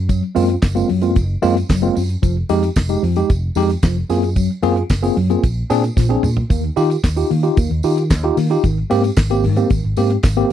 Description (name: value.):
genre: disco.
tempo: 112 BPM.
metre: 4/4.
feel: straight.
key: unclear.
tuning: A4 = 440 Hz.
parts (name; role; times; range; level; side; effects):
fingered electric bass; bass; 0.0-10.4 s; F1 to Eb3; -19 LUFS; equal; none.
tine electric piano; accompaniment; 0.1-10.5 s; Ab2 to Ab4; -17 LUFS; left 1 dB; medium stereo tremolo.
damped 70s drum kit; drums; 0.1-10.5 s; handclaps, hi-hat, kick drum, snare drum, toms; -16 LUFS; equal; none.
tambourine; percussion; 0.1-10.4 s; none; -37 LUFS; right 7 dB; none.
room: light reverb.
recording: dry, close 1970s-style studio recording.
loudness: -14 LUFS.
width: side -10 dB against mid.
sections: 0.0-6.5 A section; 6.5-10.5 B section.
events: drum fill 6.0-6.5.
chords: 0.0 Gbmaj9#11; 2.2 Fm9; 4.1 Gbmaj9#11; 5.4 Bb7; 6.5 Ebadd9; 8.6 Abmaj7.